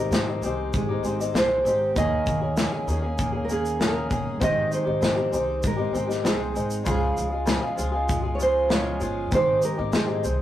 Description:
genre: acoustic pop.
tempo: 98 BPM.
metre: 4/4.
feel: straight.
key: Ab major.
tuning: A4 = 440 Hz.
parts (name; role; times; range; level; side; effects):
nylon-string guitar; melody; 0.0-10.4 s; Ab4 to Eb5; -26 LUFS; right 2 dB; none.
fingerpicked twelve-string acoustic guitar; accompaniment; 0.0-10.4 s; Db3 to Ab4; -28 LUFS; left 3 dB; none.
mellow reed electric piano; accompaniment; 0.0-10.4 s; Ab3 to G5; -40 LUFS; left 2 dB; none.
picked steel-string acoustic guitar; arpeggios; 0.0-10.4 s; Eb3 to Ab4; -34 LUFS; right 3 dB; none.
upright bass; bass; 0.0-10.4 s; G1 to Ab2; -30 LUFS; equal; none.
modern studio drum kit; drums; 0.1-10.4 s; kick drum, shaker, snare drum; -27 LUFS; left 1 dB; none.
room: moderate studio reverb, RT60 0.6 s.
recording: rough rehearsal-room recording, warm saturation.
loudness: -22 LUFS.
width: side -12 dB against mid.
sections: 0.0-10.4 A section.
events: none.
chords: 0.0 Abmaj7; 2.0 Eb7sus4; 4.4 Abmaj7; 6.9 Db; 9.3 Abmaj7.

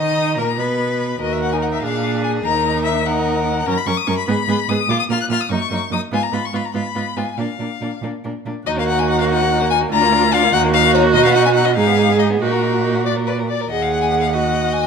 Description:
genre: quick classical-period movement for string quartet.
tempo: 97 BPM (dotted quarters).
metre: 6/8.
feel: rubato.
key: Eb minor from 3.7 s.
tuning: A4 = 440 Hz.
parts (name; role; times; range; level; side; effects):
warm violin; melody; 0.0-14.9 s; Bb4 to Gb6; -20 LUFS; left 10 dB; none.
warm violin; second line; 0.0-14.9 s; Bb3 to Gb5; -23 LUFS; left 4 dB; none.
warm viola; accompaniment; 0.0-14.9 s; Bb3 to Ab4; -22 LUFS; right 5 dB; none.
rich cello; bass; 0.0-14.9 s; D2 to D#3; -21 LUFS; right 6 dB; none.
room: moderate recital hall reverb, RT60 1.5 s.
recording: none.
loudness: -15 LUFS.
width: side -6 dB against mid.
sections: 0.0-8.7 A section; 8.7-14.9 B section.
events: none.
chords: 0.0 Bmaj7; 1.2 D#m; 1.8 A#7; 2.5 D#m; 3.7 Gb; 4.3 Abm; 4.9 Bb5; 5.5 Ebm; 6.1 Fdim/Ab; 7.4 Bb; 8.7 Ebm; 9.9 Bb/D; 10.5 Ebm; 11.1 B; 11.8 Abm; 12.4 Ebm/Bb; 13.7 Ebm.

